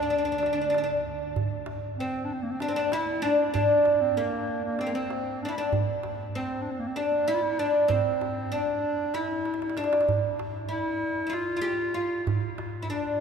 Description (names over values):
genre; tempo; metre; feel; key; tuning
Turkish makam ensemble; 192 BPM (eighths); 7/8; straight; D makam ussak; A4 = 440 Hz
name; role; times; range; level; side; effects
oud; melody; 0.0-13.2 s; Bb3 to G4; -26 LUFS; equal; none
clear clarinet; second line; 0.0-13.2 s; Bb3 to F4; -31 LUFS; equal; none
dark double bass; drone; 0.0-1.4 s; D2; -44 LUFS; right 3 dB; none
darbuka; percussion; 0.4-12.7 s; none; -34 LUFS; right 3 dB; none
room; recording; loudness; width
wet cathedral reverb, RT60 5.8 s; recorded in a church or concert hall; -25 LUFS; side -6 dB against mid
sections
0.0-1.4 A section; 1.4-13.2 B section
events
drum fill 9.5-10.1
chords
none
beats
0.11 0.43 0.74 1.05 | 1.36 1.67 1.98 2.29 2.60 2.92 3.23 | 3.54 3.85 4.16 4.47 4.78 5.10 5.41 | 5.72 6.03 6.34 6.65 6.97 7.28 7.59 | 7.90 8.21 8.53 8.84 9.15 9.46 9.77 | 10.08 10.40 10.71 11.02 11.33 11.64 11.96 | 12.27 12.58 12.89 13.20